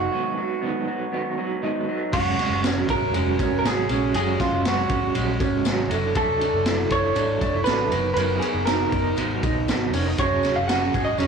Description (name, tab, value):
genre	jangly indie pop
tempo	119 BPM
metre	4/4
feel	straight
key	F# major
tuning	A4 = 440 Hz
part	clean electric guitar	melody	0.0-11.3 s	E#4 to F#5	-25 LUFS	right 2 dB	analog delay
part	electric guitar through a small old amp	accompaniment	0.0-11.3 s	G#2 to A#4	-27 LUFS	right 6 dB	tremolo
part	electric guitar through a small old amp	arpeggios	0.0-11.3 s	G#2 to A#4	-27 LUFS	equal	none
part	vintage muted fingered electric bass	bass	0.0-11.3 s	E#1 to A#1	-28 LUFS	left 2 dB	none
part	raw garage drum kit	drums	2.1-11.3 s	crash cymbal, hi-hat, kick drum, ride cymbal, snare drum	-27 LUFS	equal	none
part	tambourine	percussion	2.1-11.3 s	none	-41 LUFS	left 12 dB	none
part	phased string machine	sustained chords	10.4-11.3 s	G#4 to C#6	-37 LUFS	right 1 dB	ensemble chorus, phaser
room	moderate spring reverb, RT60 1.5 s, studio reverb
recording	blown-out, overdriven recording, overdrive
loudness	-20 LUFS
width	side -6 dB against mid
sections	0.0-2.1 A section; 2.1-11.3 B section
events	break 0.1-2.1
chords	0.0 G#m7; 2.1 F#sus2; 5.9 Dadd9/F#; 7.9 Bmaj7/F#; 10.2 F#sus2